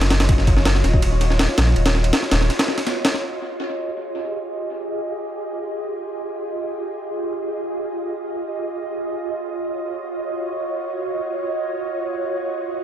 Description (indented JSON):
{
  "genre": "drum and bass, jungle",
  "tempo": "free time",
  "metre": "none",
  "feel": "none",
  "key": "F phrygian",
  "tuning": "A4 = 440 Hz",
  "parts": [
    { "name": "ethereal airy pad", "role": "sustained chords", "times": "0.0-12.8 s", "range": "F4 to Eb5", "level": "-25 LUFS", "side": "right 1 dB", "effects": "ensemble chorus, built-in reverb" },
    { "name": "soft dub sub bass", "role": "bass", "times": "0.0-2.5 s", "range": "Eb1 to Bb1", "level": "-18 LUFS", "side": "equal", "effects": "tube saturation" },
    { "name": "breakbeat sampler-style drum kit", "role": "drums", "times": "0.0-3.2 s", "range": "kick drum, ride cymbal, snare drum", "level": "-19 LUFS", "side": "equal", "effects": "tape echo" }
  ],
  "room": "moderate spring reverb, RT60 1.7 s",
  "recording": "echo-heavy mix",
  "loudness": "-20 LUFS",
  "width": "side -10 dB against mid",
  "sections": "0.0-3.2 A section; 3.2-12.8 B section",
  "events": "drop 0.0-3.2; break 2.5-3.2",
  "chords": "0.0 Ebm9; 3.2 Fm9; 9.1 Ebm9"
}